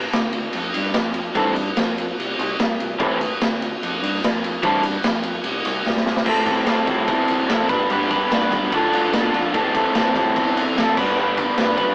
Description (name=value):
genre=garage rock duo or trio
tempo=147 BPM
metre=4/4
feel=straight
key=A minor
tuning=A4 = 440 Hz
part: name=growling fingered electric bass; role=bass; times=0.0-11.9 s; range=G1 to B2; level=-29 LUFS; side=equal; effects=overdrive, tube saturation
part: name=raw garage drum kit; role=drums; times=0.1-11.9 s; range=crash cymbal, kick drum, ride cymbal, snare drum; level=-21 LUFS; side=equal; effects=none
part: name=tambourine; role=percussion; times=0.1-11.9 s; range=none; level=-46 LUFS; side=right 1 dB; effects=none
part: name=crunchy overdriven guitar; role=riff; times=1.3-11.9 s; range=A2 to B4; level=-18 LUFS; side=equal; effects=none
room=moderate small room reverb, RT60 0.5 s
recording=rough rehearsal-room recording, AM radio sound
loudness=-17 LUFS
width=side -26 dB against mid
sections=0.0-6.3 A section; 6.3-11.9 B section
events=drum fill 5.9-6.3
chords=0.0 Am; 7.7 G; 8.7 Dm; 9.5 Am; 11.0 G